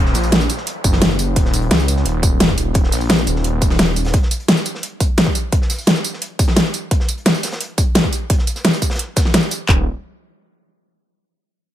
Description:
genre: dark technical drum and bass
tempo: 173 BPM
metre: 4/4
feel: straight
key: Eb minor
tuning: A4 = 439 Hz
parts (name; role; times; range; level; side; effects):
- wide detuned saw bass; bass; 0.0-4.1, 9.7-9.8 s; Eb1 to Db2; -18 LUFS; equal; chorus, overdrive, sidechain pumping
- downlifter; sound effects; 0.0-1.4 s; none; -30 LUFS; equal; none
- crunchy breakbeat drum kit; drums; 0.1-9.6 s; hi-hat, snare drum; -30 LUFS; equal; none
- dubstep drum kit; drums; 0.1-9.6 s; hi-hat, snare drum, tambourine; -16 LUFS; equal; overdrive
- dubstep drum kit; drums; 0.8-9.8 s; handclaps, kick drum, toms; -16 LUFS; equal; overdrive
room: little or no reverb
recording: none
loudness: -14 LUFS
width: side -12 dB against mid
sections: 0.0-9.7 A section; 9.7-11.1 B section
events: none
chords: none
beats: 0.32 0.67 1.02 | 1.36 1.71 2.06 2.40 | 2.75 3.10 3.44 3.79 | 4.14 4.48 4.83 5.18 | 5.53 5.87 6.22 6.57 | 6.91 7.26 7.61 7.95 | 8.30 8.65 8.99 9.34 | 9.69

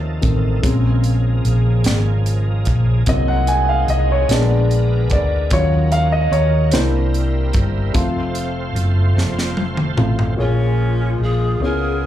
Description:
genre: slow gospel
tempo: 49 BPM (dotted quarters)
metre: 6/8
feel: straight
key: Bb minor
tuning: A4 = 440 Hz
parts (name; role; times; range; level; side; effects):
- warm concert grand piano; accompaniment; 0.0-12.1 s; Bb2 to Ab5; -21 LUFS; left 2 dB; plate reverb, slapback echo
- bright tonewheel organ; sustained chords; 0.0-10.3 s; C3 to C5; -29 LUFS; right 6 dB; fast rotary speaker, overdrive, chorus vibrato, plate reverb
- mellow French horn section; sustained chords; 0.0-10.4 s; C3 to Bb4; -33 LUFS; right 2 dB; plate reverb
- hollow-body short-scale fingered electric bass; bass; 0.0-12.1 s; F1 to Eb2; -17 LUFS; equal; none
- crisp fusion drum kit; drums; 0.2-10.4 s; hi-hat, kick drum, snare drum, toms; -21 LUFS; equal; none
- breathy bright pan flute; melody; 10.4-12.1 s; F4 to Bb4; -26 LUFS; left 1 dB; plate reverb, slapback echo
- clear saxophone section; melody; 10.4-12.1 s; F3 to Ab4; -26 LUFS; left 2 dB; plate reverb, slapback echo
room: little or no reverb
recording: live gig heard through the venue's PA, club reverb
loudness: -15 LUFS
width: side -12 dB against mid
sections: 0.0-10.4 A section; 10.4-12.1 B section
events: grand piano solo 0.0-10.4; drum fill 9.2-10.4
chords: 0.0 F7; 0.6 Bbm7; 3.1 Ab7/C; 4.3 Bb7b9; 5.5 Ebm7; 6.7 C7; 8.0 F; 10.4 Bbm7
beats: | 0.64 1.86 | 3.08 4.29 | 5.51 6.73 | 7.95 9.17 | 10.39 11.61

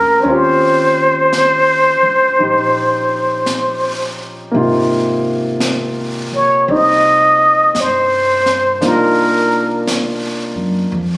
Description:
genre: jazz ballad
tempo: 56 BPM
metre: 4/4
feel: swing 66% on 8ths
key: unclear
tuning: A4 = 440 Hz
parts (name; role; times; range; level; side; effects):
- trumpet with plunger mute; melody; 0.0-9.9 s; Bb4 to Eb5; -11 LUFS; equal; none
- clear concert grand piano; accompaniment; 0.0-10.9 s; C3 to Ab4; -18 LUFS; equal; none
- upright bass; bass; 0.0-11.2 s; Ab1 to G2; -26 LUFS; equal; none
- jazz brush drum kit; drums; 0.3-11.2 s; brushed snare drum, hi-hat, snare drum; -24 LUFS; equal; none
room: light reverb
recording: recorded on a phone in the room, studio reverb, compression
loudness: -11 LUFS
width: side -21 dB against mid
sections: 0.0-11.2 A section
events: none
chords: 0.3 Eb13; 4.5 Ab6; 8.8 Cm11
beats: | 0.26 1.32 2.39 3.46 | 4.53 5.60 6.68 7.75 | 8.81 9.87 10.93

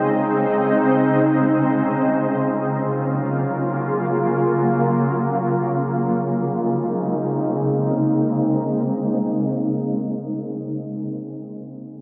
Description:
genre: hip hop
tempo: free time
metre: none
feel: none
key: Bb minor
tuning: A4 = 440 Hz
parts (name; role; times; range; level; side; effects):
- shimmering ambient pad; sustained chords; 0.0-11.0 s; Db3 to F4; -21 LUFS; equal; chorus, built-in reverb
room: moderate lush hall reverb, RT60 1.8 s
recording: low-pass filter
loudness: -21 LUFS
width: mono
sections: 0.0-6.3 A section; 6.3-10.2 B section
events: filter sweep 0.0-6.3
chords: 0.0 Abadd11/Db; 2.3 Gbmaj7; 6.3 Bbm11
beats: free time

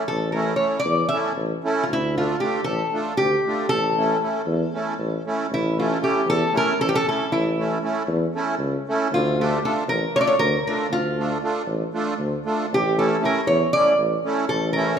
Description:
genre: balkan folk, Balkan wedding band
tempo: 233 BPM (eighths)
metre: 7/8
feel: straight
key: A phrygian dominant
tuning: A4 = 441 Hz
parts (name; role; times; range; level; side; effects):
- accordion; accompaniment; 0.0-15.0 s; A3 to A4; -25 LUFS; right 2 dB; light tremolo tuning
- lap resonator guitar; melody; 0.1-15.0 s; E4 to E5; -22 LUFS; equal; none
- clear tuba; bass; 0.1-14.9 s; A1 to E2; -26 LUFS; left 1 dB; none
room: wet recital hall reverb, RT60 1.4 s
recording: minimal, uncompressed stereo recording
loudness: -20 LUFS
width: side -8 dB against mid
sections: 0.0-5.5 A section; 5.5-15.0 A section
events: none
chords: 0.0 A; 1.9 Dm; 3.7 A; 9.1 Dm; 12.7 A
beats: | 0.09 0.34 0.60 0.86 1.12 1.38 1.64 | 1.90 2.16 2.42 2.68 2.93 3.19 3.45 | 3.71 3.97 4.23 4.49 4.74 5.00 5.26 | 5.52 5.78 6.03 6.29 6.55 6.81 7.06 | 7.32 7.58 7.84 8.09 8.35 8.61 8.86 | 9.12 9.38 9.63 9.89 10.15 10.40 10.66 | 10.92 11.17 11.43 11.69 11.94 12.20 12.45 | 12.71 12.96 13.22 13.48 13.73 13.99 14.24 | 14.50 14.75

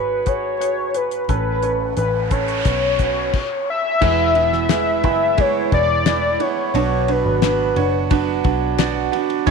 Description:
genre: piano-driven pop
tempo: 88 BPM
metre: 4/4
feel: straight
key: E mixolydian from 4.0 s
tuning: A4 = 441 Hz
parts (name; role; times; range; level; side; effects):
- warm velvety synth lead; melody; 0.0-8.1 s; B4 to E5; -20 LUFS; left 4 dB; chorus
- warm concert grand piano; accompaniment; 0.0-9.5 s; G#2 to D5; -23 LUFS; right 13 dB; none
- vintage muted picked electric bass; bass; 0.0-9.5 s; E1 to C#2; -24 LUFS; left 1 dB; none
- damped 70s drum kit; drums; 0.3-9.5 s; crash cymbal, hi-hat, kick drum, ride cymbal, snare drum; -22 LUFS; left 4 dB; none
- noise sweep; sound effects; 1.7-4.0 s; none; -29 LUFS; right 2 dB; none
- fingerpicked steel-string acoustic guitar; riff; 4.0-9.5 s; E2 to F#4; -23 LUFS; right 13 dB; none
- group handclap; percussion; 4.7-8.9 s; none; -32 LUFS; left 16 dB; none
room: light reverb, small room ambience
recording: 1960s-style stereo with parts hard left and right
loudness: -16 LUFS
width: side -5 dB against mid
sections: 0.0-4.0 A section; 4.0-9.5 B section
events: noise sweep 1.7-4.0; stop 3.3-4.0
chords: 0.0 G#m7; 1.3 Aadd9; 2.7 Bsus2; 4.0 E; 6.7 Bm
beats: 0.61 | 1.29 1.98 2.66 3.34 | 4.02 4.70 5.38 6.06 | 6.75 7.43 8.11 8.79 | 9.47

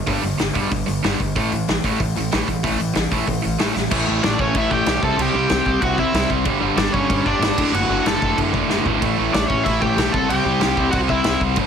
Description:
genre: punk rock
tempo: 188 BPM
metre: 4/4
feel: straight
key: unclear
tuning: A4 = 440 Hz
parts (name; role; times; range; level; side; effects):
- distorted electric guitar; riff; 0.0-11.7 s; D2 to C4; -24 LUFS; right 11 dB; overdrive
- raw garage guitar; riff; 0.0-11.7 s; D2 to C4; -25 LUFS; left 12 dB; overdrive
- upright bass; bass; 0.0-11.7 s; F#1 to C2; -26 LUFS; equal; none
- loose indie drum kit; drums; 0.1-11.6 s; crash cymbal, hi-hat, kick drum, snare drum, toms; -23 LUFS; equal; none
- crunchy overdriven guitar; riff; 3.9-11.7 s; D2 to C4; -26 LUFS; equal; none
- cranked stack guitar; melody; 4.2-11.4 s; C#4 to A5; -21 LUFS; equal; overdrive
room: light reverb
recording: heavily compressed radio sound, multiband compression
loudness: -17 LUFS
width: side -7 dB against mid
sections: 0.0-3.9 A section; 3.9-11.7 B section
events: drum fill 3.8, 8.7-9.0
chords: 0.0 G5; 1.4 A5; 3.9 A; 5.0 C; 6.5 G5; 7.6 D/F#; 9.0 A; 10.1 C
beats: | 0.08 0.40 0.72 1.04 | 1.35 1.68 1.99 2.31 | 2.63 2.95 3.27 3.59 | 3.91 4.23 4.55 4.87 | 5.19 5.51 5.83 6.14 | 6.46 6.78 7.10 7.42 | 7.74 8.06 8.38 8.70 | 9.02 9.34 9.66 9.98 | 10.30 10.62 10.94 11.26 | 11.58

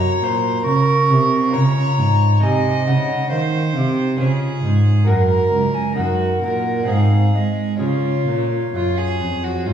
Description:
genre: classical, baroque-style sonata movement with continuo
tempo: 64-69 BPM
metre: 3/4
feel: rubato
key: Db major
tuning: A4 = 440 Hz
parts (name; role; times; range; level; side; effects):
- bright baroque flute; melody; 0.0-9.7 s; Db5 to Db6; -23 LUFS; left 2 dB; none
- rich violin; second line; 0.0-9.7 s; F4 to Eb5; -24 LUFS; right 3 dB; none
- lute; accompaniment; 0.0-9.7 s; F2 to Eb5; -25 LUFS; right 1 dB; none
- rich cello; bass; 0.0-9.7 s; Db2 to Ab3; -18 LUFS; right 1 dB; none
room: wet recital hall reverb, RT60 1.4 s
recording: heard from further back in the room, studio ambience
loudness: -15 LUFS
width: side -9 dB against mid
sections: 0.0-9.7 A section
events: none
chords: 0.0 Gb; 1.5 Db; 2.4 Ab/C; 4.2 Db; 5.1 Gb; 6.0 Ebm/Gb; 6.9 Ab; 7.8 Db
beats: 0.66 1.54 | 2.43 3.32 4.20 | 5.09 5.98 6.89 | 7.81 8.74 9.67

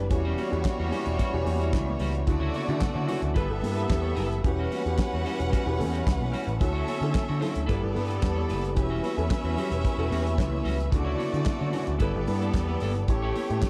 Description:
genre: disco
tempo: 111 BPM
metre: 4/4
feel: straight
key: E dorian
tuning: A4 = 439 Hz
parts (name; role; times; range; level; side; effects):
- clear studio violin section; second line; 0.0-13.7 s; G3 to F#5; -35 LUFS; equal; none
- clean electric guitar; accompaniment; 0.0-13.7 s; G3 to C#5; -40 LUFS; equal; none
- dark baby grand piano; accompaniment; 0.0-13.7 s; C#3 to C#5; -35 LUFS; equal; none
- dark French horn section; sustained chords; 0.0-13.7 s; D3 to G4; -39 LUFS; equal; none
- overdriven picked electric bass; bass; 0.0-13.7 s; E1 to D3; -31 LUFS; equal; none
- damped 70s drum kit; drums; 0.1-13.7 s; handclaps, hi-hat, kick drum, snare drum; -31 LUFS; equal; none
- congas; percussion; 0.4-13.7 s; none; -42 LUFS; equal; none
room: light reverb, small room ambience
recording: dark, warm production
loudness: -27 LUFS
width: mono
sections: 0.0-13.7 A section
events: none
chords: 0.1 Em69; 2.3 Dmaj9; 3.4 G69; 4.4 Em69; 6.6 Dmaj9; 7.7 G69; 8.8 Em69; 10.9 Dmaj9; 12.0 G69; 13.1 A7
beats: | 0.11 0.65 1.19 1.74 | 2.28 2.82 3.36 3.90 | 4.44 4.98 5.52 6.06 | 6.61 7.14 7.68 8.22 | 8.77 9.30 9.85 10.38 | 10.92 11.46 12.00 12.54 | 13.08 13.62

